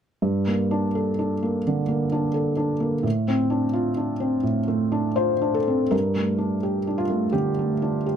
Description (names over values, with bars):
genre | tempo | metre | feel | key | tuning
neoclassical minimalist piano | 84 BPM | 4/4 | rubato | unclear | A4 = 440 Hz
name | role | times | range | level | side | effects
felt-muted upright piano | solo | 0.2-8.2 s | G2 to C5 | -21 LUFS | equal | none
room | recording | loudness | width
light reverb | close, detailed microphones | -21 LUFS | side -8 dB against mid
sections
0.2-5.9 A section; 5.9-8.2 B section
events
none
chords
0.2 Gmadd9; 3.0 F6/A; 5.9 Gmadd9